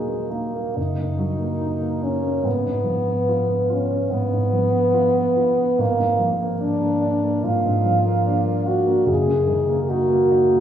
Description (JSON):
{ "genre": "classical, romantic duo for French horn and grand piano", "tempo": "72 BPM", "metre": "4/4", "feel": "rubato", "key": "Eb minor", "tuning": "A4 = 440 Hz", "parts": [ { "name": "warm French horn", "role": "melody", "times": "0.0-10.6 s", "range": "Ab3 to Ab4", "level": "-20 LUFS", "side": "equal", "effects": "none" }, { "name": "warm baby grand piano", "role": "accompaniment", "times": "0.0-10.6 s", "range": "Gb1 to F4", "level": "-22 LUFS", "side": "equal", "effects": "none" } ], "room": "wet recital hall reverb, RT60 1.8 s", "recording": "heard from further back in the room", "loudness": "-18 LUFS", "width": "side -9 dB against mid", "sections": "0.0-10.6 A section", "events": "none", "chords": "0.0 Ebm; 0.8 Ebm/Gb; 2.5 Fdim/Ab; 5.8 Bb7/Ab; 9.1 Ebm/Gb", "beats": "0.77 1.62 | 2.45 3.30 4.13 4.96 | 5.80 6.63 7.45 8.28 | 9.09 9.90" }